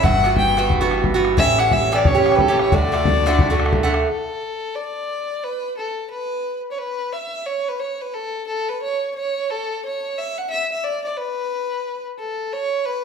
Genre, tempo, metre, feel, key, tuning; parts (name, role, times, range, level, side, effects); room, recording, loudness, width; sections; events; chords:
celtic folk, Celtic hornpipe; 178 BPM; 4/4; swing 63% on 8ths; D major; A4 = 440 Hz
dark fiddle; melody; 0.0-13.0 s; A4 to G5; -22 LUFS; left 1 dB
Irish bouzouki; accompaniment; 0.0-4.1 s; G2 to G4; -19 LUFS; right 3 dB
upright bass; bass; 0.0-4.0 s; G1 to D2; -24 LUFS; equal
bodhran; percussion; 0.0-4.0 s; -21 LUFS; left 2 dB
wet large studio reverb, RT60 1.1 s; band playing live in one room; -18 LUFS; side -6 dB against mid
0.0-4.1 A section; 4.1-13.0 B section
0.0 Emadd9/G; 1.4 A7; 2.7 D; 4.1 N.C.